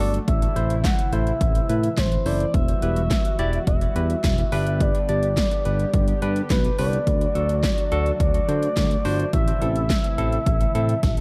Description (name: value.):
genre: synth-pop.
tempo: 106 BPM.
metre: 4/4.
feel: straight.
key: unclear.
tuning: A4 = 440 Hz.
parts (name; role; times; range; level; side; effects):
expressive synth lead; melody; 0.0-11.2 s; B4 to F#5; -29 LUFS; equal; chorus, tape echo.
barky tine electric piano; accompaniment; 0.0-10.9 s; C4 to D5; -32 LUFS; equal; tape echo.
chorused pulse-width pad; sustained chords; 0.0-11.2 s; C3 to G4; -34 LUFS; equal; none.
smooth synth bass; bass; 0.0-11.2 s; E1 to D3; -26 LUFS; equal; none.
80s electronic pad drums; drums; 0.1-11.2 s; handclaps, hi-hat, kick drum, snare drum; -25 LUFS; equal; overdrive.
room: light reverb.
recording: echo-heavy mix.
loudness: -22 LUFS.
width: mono.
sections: 0.0-11.2 A section.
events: drum fill 11.0.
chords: 0.3 Am; 2.5 Emadd9; 4.5 G; 7.1 D; 9.3 Am.